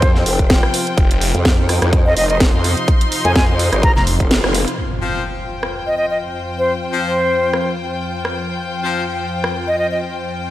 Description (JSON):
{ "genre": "bass house", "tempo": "126 BPM", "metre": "4/4", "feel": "swing 55% on 16ths", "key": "unclear", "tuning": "A4 = 440 Hz", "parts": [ { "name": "bright concert flute", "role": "melody", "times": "0.0-10.0 s", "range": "C5 to Bb5", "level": "-20 LUFS", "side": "equal", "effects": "digital delay" }, { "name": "sweeping resonant pad", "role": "sustained chords", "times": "0.0-10.5 s", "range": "F2 to Eb4", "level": "-26 LUFS", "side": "equal", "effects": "chorus, sidechain pumping" }, { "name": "growl bass", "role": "bass", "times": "0.0-4.7 s", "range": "F1 to F2", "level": "-18 LUFS", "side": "equal", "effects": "chorus, tube saturation, sidechain pumping" }, { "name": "electronic kick drum", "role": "drums", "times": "0.0-4.3 s", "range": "none", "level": "-14 LUFS", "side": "equal", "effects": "none" }, { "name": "house drum kit", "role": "drums", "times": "0.0-9.5 s", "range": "hi-hat, rim click, snare drum", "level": "-20 LUFS", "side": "equal", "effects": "overdrive" }, { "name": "warm chamber string section", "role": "texture", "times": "0.0-10.5 s", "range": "F4 to C6", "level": "-24 LUFS", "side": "left 2 dB", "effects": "sidechain pumping" }, { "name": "phased detuned saw bass", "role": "bass", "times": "1.0-4.2 s", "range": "F1", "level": "-18 LUFS", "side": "equal", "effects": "phaser, tube saturation, sidechain pumping" }, { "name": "impact", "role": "sound effects", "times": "4.8-6.7 s", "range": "none", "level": "-28 LUFS", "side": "equal", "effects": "none" }, { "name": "brilliant horn section", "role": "stabs", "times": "5.0-9.0 s", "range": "F3 to C5", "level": "-24 LUFS", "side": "left 4 dB", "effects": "sidechain pumping, digital delay" } ], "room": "light reverb, digital ambience", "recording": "none", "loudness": "-14 LUFS", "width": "side -14 dB against mid", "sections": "0.0-4.8 A section; 4.8-10.5 B section", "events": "drop 0.0-4.8; kick drops out 4.3-4.8; band accent 4.3; impact 4.8-6.7; filter sweep on analog synth pad 4.8-10.5", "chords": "0.0 F5", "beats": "0.02 0.50 | 0.97 1.45 1.93 2.40 | 2.88 3.36 3.83 4.31 | 4.79 5.26 5.74 6.21 | 6.69 7.17 7.64 8.12 | 8.59 9.07 9.55 10.02 | 10.50" }